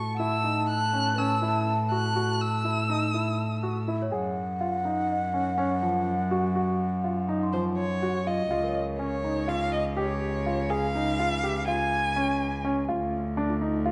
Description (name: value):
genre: contemporary instrumental, chamber music in an uneven meter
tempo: 246 BPM (eighths)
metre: 9/8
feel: straight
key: unclear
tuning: A4 = 439 Hz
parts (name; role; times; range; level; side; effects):
- dark violin; melody; 0.0-3.9, 7.5-12.6 s; C5 to Gb6; -33 LUFS; equal; none
- bass bansuri; second line; 0.0-8.2 s; Gb5 to A5; -33 LUFS; equal; none
- rich cello; bass; 0.0-13.9 s; Db2 to A2; -32 LUFS; equal; none
- celesta; texture; 0.1-13.9 s; F4 to C6; -42 LUFS; equal; none
- warm grand piano; arpeggios; 0.2-13.9 s; F3 to Ab4; -32 LUFS; equal; none
room: wet concert hall reverb, RT60 2.0 s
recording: nothing above 10.3 kHz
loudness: -27 LUFS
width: mono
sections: 0.0-8.5 A section; 8.5-13.9 B section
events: none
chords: 0.0 A5; 4.1 N.C.; 8.5 Db; 12.9 Dm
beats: 0.20 0.45 0.69 0.94 1.18 1.43 1.67 | 1.91 2.16 2.40 2.65 2.89 3.14 3.38 3.63 3.87 | 4.12 4.36 4.60 4.85 5.09 5.34 5.58 5.83 6.07 | 6.31 6.56 6.80 7.05 7.29 7.54 7.78 8.02 8.27 | 8.51 8.76 9.00 9.24 9.49 9.73 9.97 10.22 10.46 | 10.71 10.95 11.19 11.44 11.68 11.92 12.17 12.41 12.65 | 12.89 13.14 13.38 13.62 13.87